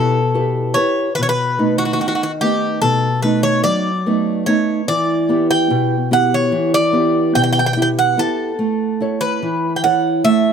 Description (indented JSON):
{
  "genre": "greek folk, Greek bouzouki band",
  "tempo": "146 BPM (eighths)",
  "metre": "9/8",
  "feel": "straight",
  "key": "unclear",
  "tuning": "A4 = 440 Hz",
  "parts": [
    { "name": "Greek bouzouki", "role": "melody", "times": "0.0-10.5 s", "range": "F#4 to G5", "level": "-18 LUFS", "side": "equal", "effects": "none" },
    { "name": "nylon-string guitar", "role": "accompaniment", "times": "0.0-10.5 s", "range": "B2 to C#5", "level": "-17 LUFS", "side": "right 1 dB", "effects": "none" }
  ],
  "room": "light reverb",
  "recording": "close, detailed microphones",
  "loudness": "-14 LUFS",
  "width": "side -7 dB against mid",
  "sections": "0.0-10.5 A section",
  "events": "none",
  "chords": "0.0 Em; 1.2 B7; 4.9 Em; 8.6 A",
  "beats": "0.34 0.75 | 1.17 1.58 1.99 2.40 2.82 3.23 3.64 4.05 4.46 | 4.88 5.29 5.70 6.12 6.53 6.94 7.35 7.76 8.18 | 8.59 9.00 9.41 9.83 10.24"
}